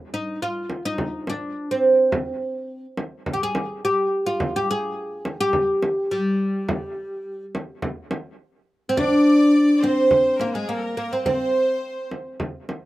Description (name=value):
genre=Arabic maqam ensemble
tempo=105 BPM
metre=4/4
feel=straight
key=unclear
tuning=A4 = 439 Hz
part: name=oud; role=melody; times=0.1-12.1 s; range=G3 to Ab4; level=-20 LUFS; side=equal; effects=slapback echo
part: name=frame drum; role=percussion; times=0.7-12.8 s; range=none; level=-28 LUFS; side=right 1 dB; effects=none
part: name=bright chamber violin section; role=second line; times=9.0-12.1 s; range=Ab4 to D5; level=-33 LUFS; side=left 1 dB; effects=slapback echo
part: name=warm violin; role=second line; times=9.0-12.1 s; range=Ab4 to D5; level=-30 LUFS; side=left 4 dB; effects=slapback echo
room=little or no reverb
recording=recorded outdoors, with no room sound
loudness=-20 LUFS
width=side -16 dB against mid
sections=0.0-9.0 A section; 9.0-12.9 B section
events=none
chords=none